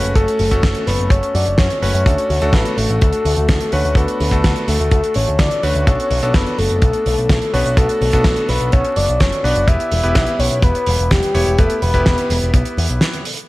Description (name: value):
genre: italo disco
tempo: 126 BPM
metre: 4/4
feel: straight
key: E dorian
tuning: A4 = 440 Hz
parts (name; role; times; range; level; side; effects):
- soft octave-layered synth lead; melody; 0.0-12.7 s; G4 to E5; -19 LUFS; left 1 dB; chorus, tape echo
- clear electric grand piano; stabs; 0.0-13.2 s; A3 to C#5; -24 LUFS; equal; none
- picked electric bass with an envelope filter; bass; 0.0-13.0 s; E1 to F#2; -19 LUFS; equal; none
- damped 70s drum kit; drums; 0.0-13.5 s; hi-hat, snare drum; -22 LUFS; right 1 dB; studio reverb, gated reverb
- kick drum; drums; 0.2-12.6 s; none; -15 LUFS; equal; studio reverb
room: studio ambience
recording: vinyl crackle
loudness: -13 LUFS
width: side -19 dB against mid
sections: 0.0-13.5 A section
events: break 13.0-13.5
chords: 0.0 F#m; 2.1 D; 5.9 Bm7; 9.7 Em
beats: | 0.15 0.63 1.11 1.58 | 2.06 2.54 3.01 3.49 | 3.96 4.44 4.92 5.39 | 5.87 6.34 6.82 7.30 | 7.77 8.25 8.73 9.20 | 9.68 10.15 10.63 11.11 | 11.58 12.06 12.54 13.01